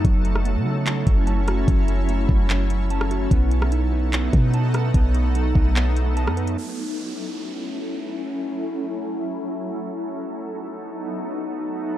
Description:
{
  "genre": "hip hop, atmospheric cloud-rap",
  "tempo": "147 BPM",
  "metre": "4/4",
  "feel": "half-time",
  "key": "F# dorian",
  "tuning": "A4 = 440 Hz",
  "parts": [
    { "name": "shimmering ambient pad", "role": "sustained chords", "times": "0.0-12.0 s", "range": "F#3 to A4", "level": "-27 LUFS", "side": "left 1 dB", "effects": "chorus, built-in reverb, sidechain pumping, low-pass filter" },
    { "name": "mellow electric guitar", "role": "arpeggios", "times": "0.0-6.6 s", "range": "F#3 to A5", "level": "-29 LUFS", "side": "right 7 dB", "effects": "low-pass filter, digital delay" },
    { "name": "clean 808-style bass", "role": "bass", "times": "0.0-6.6 s", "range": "F#1 to C#3", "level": "-21 LUFS", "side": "equal", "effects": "none" },
    { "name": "smooth R&B drum kit", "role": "drums", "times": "0.0-6.6 s", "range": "handclaps, hi-hat, kick drum, rim click", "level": "-21 LUFS", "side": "equal", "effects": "none" },
    { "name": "downlifter", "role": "sound effects", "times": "6.6-9.8 s", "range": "none", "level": "-40 LUFS", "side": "right 2 dB", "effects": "none" }
  ],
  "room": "digital ambience",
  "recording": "dark, warm production",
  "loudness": "-20 LUFS",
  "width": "side -13 dB against mid",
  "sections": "0.0-6.6 A section; 6.6-12.0 B section",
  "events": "none",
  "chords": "0.0 F#m7; 3.3 B7; 6.6 F#m7; 9.8 B7",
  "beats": "| 0.05 0.45 0.86 1.27 | 1.68 2.09 2.50 2.90 | 3.31 3.72 4.13 4.54 | 4.94 5.35 5.76 6.17 | 6.58 6.99 7.39 7.80 | 8.21 8.62 9.03 9.43 | 9.84 10.25 10.66 11.07 | 11.47 11.88"
}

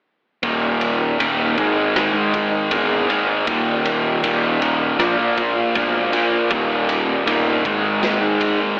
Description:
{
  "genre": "quiet-loud alternative rock",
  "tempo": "79 BPM",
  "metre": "4/4",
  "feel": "straight",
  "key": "Eb major",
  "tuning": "A4 = 440 Hz",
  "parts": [
    { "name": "fingerpicked old ladder-braced acoustic guitar", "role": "arpeggios", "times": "0.4-8.8 s", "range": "Eb2 to F4", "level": "-28 LUFS", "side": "equal", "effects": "analog delay" },
    { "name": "fuzz guitar", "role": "riff", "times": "0.4-8.8 s", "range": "Eb2 to Bb3", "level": "-21 LUFS", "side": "equal", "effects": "distortion" },
    { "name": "fuzz picked electric bass", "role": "bass", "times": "0.4-8.6 s", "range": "Eb1 to Bb2", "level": "-28 LUFS", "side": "equal", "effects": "overdrive" },
    { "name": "raw garage drum kit", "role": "drums", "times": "0.4-8.6 s", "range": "kick drum, ride cymbal, rim click, snare drum", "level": "-27 LUFS", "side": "equal", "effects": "none" }
  ],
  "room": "light reverb, studio reverb",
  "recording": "AM radio sound",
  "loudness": "-19 LUFS",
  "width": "mono",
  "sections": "0.4-8.8 A section",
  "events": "none",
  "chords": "0.4 Eb; 1.6 Absus2; 3.5 Eb; 5.0 Bb; 6.5 Eb; 7.6 Absus2",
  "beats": "| 0.43 1.19 1.95 2.71 | 3.47 4.23 4.99 5.75 | 6.51 7.27 8.03 8.78"
}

